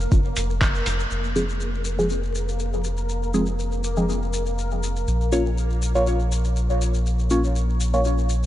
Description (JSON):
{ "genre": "dub techno", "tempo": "121 BPM", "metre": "4/4", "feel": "swing 54% on 16ths", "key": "F minor", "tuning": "A4 = 442 Hz", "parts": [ { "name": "soft dub sub bass", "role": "bass", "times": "0.0-8.5 s", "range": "F1 to Bb1", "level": "-23 LUFS", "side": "equal", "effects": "tube saturation, sidechain pumping" }, { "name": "maracas", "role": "percussion", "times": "0.0-8.5 s", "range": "none", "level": "-36 LUFS", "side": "left 5 dB", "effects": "none" }, { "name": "bubbling stepped-filter texture", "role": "texture", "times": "0.0-8.5 s", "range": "Bb3 to Bb4", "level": "-32 LUFS", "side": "left 1 dB", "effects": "chorus, built-in reverb, sidechain pumping" }, { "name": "electronic kick drum", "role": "drums", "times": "0.1-0.7 s", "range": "none", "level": "-19 LUFS", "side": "equal", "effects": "overdrive" }, { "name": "lo-fi sampler-style drum kit", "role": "drums", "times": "0.4-1.0 s", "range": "handclaps, hi-hat", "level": "-29 LUFS", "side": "right 1 dB", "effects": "none" }, { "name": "deep mellow chord stab", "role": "stabs", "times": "1.4-8.0 s", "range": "F3 to Db5", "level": "-26 LUFS", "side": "equal", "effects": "chorus, phaser, sidechain pumping, dub echo" } ], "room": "light reverb", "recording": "vinyl crackle, nothing above 10.6 kHz", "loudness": "-21 LUFS", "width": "side -13 dB against mid", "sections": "0.0-1.1 A section; 1.1-8.5 B section", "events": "filter sweep on synth stab 0.0-1.1; band accent 0.6", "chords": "0.0 Bb5; 1.1 Fm; 5.1 Bbm" }